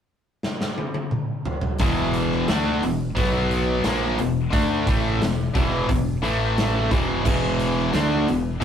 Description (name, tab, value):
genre	hard rock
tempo	88 BPM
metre	4/4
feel	straight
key	unclear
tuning	A4 = 445 Hz
part	big rock drum kit	drums	0.4-8.6 s	crash cymbal, hi-hat, kick drum, snare drum, toms	-25 LUFS	equal	none
part	overdriven semi-hollow guitar	riff	1.8-8.6 s	E2 to D4	-27 LUFS	right 3 dB	none
part	tight distorted guitar	riff	1.8-8.6 s	E2 to D4	-26 LUFS	left 4 dB	distortion
part	tight distorted guitar	riff	1.8-8.6 s	E2 to D4	-26 LUFS	equal	distortion
part	modern bright fingered electric bass	bass	1.8-8.6 s	E1 to D2	-27 LUFS	right 1 dB	none
room	wet small room reverb, RT60 0.6 s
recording	rough rehearsal-room recording, tube saturation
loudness	-20 LUFS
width	side -8 dB against mid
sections	0.0-1.8 A section; 1.8-8.6 B section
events	drum fill 0.4-1.8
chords	0.0 N.C.; 1.8 E5; 3.2 B5; 3.8 E5; 6.2 A5; 6.9 E5